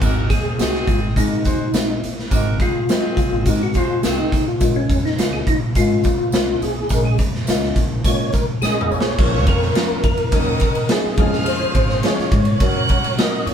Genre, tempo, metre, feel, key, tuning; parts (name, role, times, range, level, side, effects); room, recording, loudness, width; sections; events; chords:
uptempo 1960s-style soul; 105 BPM; 4/4; straight; A4 = 443 Hz
clear horn section; second line; 0.0-4.4, 9.2-13.4 s; Db3 to C5; -30 LUFS; right 3 dB
dark upright piano; accompaniment; 0.0-13.5 s; F3 to Bb4; -25 LUFS; left 2 dB
upright bass; bass; 0.0-13.5 s; Ab1 to Gb3; -24 LUFS; equal
raw garage drum kit; drums; 0.0-13.5 s; crash cymbal, hi-hat, kick drum, ride cymbal, snare drum, toms; -19 LUFS; equal
tambourine; percussion; 0.0-9.0 s; -37 LUFS; right 4 dB
percussive tonewheel organ; melody; 0.3-13.5 s; Db4 to Eb5; -22 LUFS; left 1 dB; chorus vibrato, fast rotary speaker
rich studio violin section; second line; 9.2-13.4 s; Db5 to Gb6; -27 LUFS; equal
moderate studio reverb, RT60 1.0 s; band playing live in one room; -16 LUFS; side -8 dB against mid
0.0-9.2 A section; 9.2-13.5 B section
tonewheel organ solo 0.0-9.2; drum fill 8.6-9.2
0.0 Ab7; 4.6 Bbm7; 9.2 Bbm; 10.3 Ebm7; 11.2 Db; 12.6 Gb